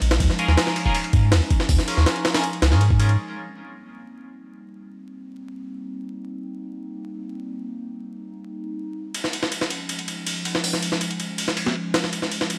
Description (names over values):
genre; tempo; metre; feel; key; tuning
drum and bass, jungle; 161 BPM; 4/4; straight; C phrygian; A4 = 440 Hz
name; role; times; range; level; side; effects
warbly tape-like pad; sustained chords; 0.0-12.6 s; F3 to F4; -34 LUFS; equal; chorus, built-in reverb, vintage 12-bit sampler grit
saturated sub bass; bass; 0.0-3.2 s; Bb1 to Ab2; -20 LUFS; equal; none
jungle sampler-style drum kit; drums; 0.0-3.2, 9.1-12.6 s; hi-hat, kick drum, ride cymbal, snare drum; -25 LUFS; equal; overdrive
band-passed chord stab; stabs; 0.4-3.1 s; Db4 to Bb4; -30 LUFS; equal; phaser, dub echo
room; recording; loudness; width
light reverb, digital ambience; vinyl crackle; -22 LUFS; mono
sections
0.0-3.2 A section; 3.2-12.6 B section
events
filter sweep on ambient pad 3.2-12.6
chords
0.0 Eb9sus4; 3.2 Cm7; 9.1 Eb9sus4